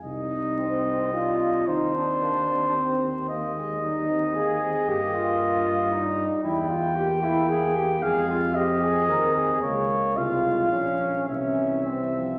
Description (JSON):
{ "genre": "classical, brass quintet", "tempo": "112 BPM", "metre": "3/4", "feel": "rubato", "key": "C minor, F minor from 6.4 s", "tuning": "A4 = 438 Hz", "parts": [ { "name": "mellow trumpet", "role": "melody", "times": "0.0-12.4 s", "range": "C5 to G5", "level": "-29 LUFS", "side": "equal", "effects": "none" }, { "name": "mellow French horn", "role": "accompaniment", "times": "0.0-12.4 s", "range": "E3 to Eb4", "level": "-36 LUFS", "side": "equal", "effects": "none" }, { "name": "mellow tuba", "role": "bass", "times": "0.0-12.4 s", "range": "Bb1 to G2", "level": "-34 LUFS", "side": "equal", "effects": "none" }, { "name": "mellow flugelhorn", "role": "second line", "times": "0.6-12.4 s", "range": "C4 to Bb4", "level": "-36 LUFS", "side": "equal", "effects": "none" }, { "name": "mellow trombone", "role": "accompaniment", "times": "0.6-12.4 s", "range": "C4 to Bb4", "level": "-29 LUFS", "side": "equal", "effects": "none" } ], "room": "wet concert hall reverb, RT60 1.8 s", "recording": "vinyl crackle", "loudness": "-25 LUFS", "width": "mono", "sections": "0.0-12.4 A section", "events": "none", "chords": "0.0 Cm; 1.7 Cm/Eb; 3.3 Ebadd11; 4.9 Eb/G; 6.4 Edim; 8.0 Fm; 9.6 Db; 10.7 Gdim/Bb; 11.3 C" }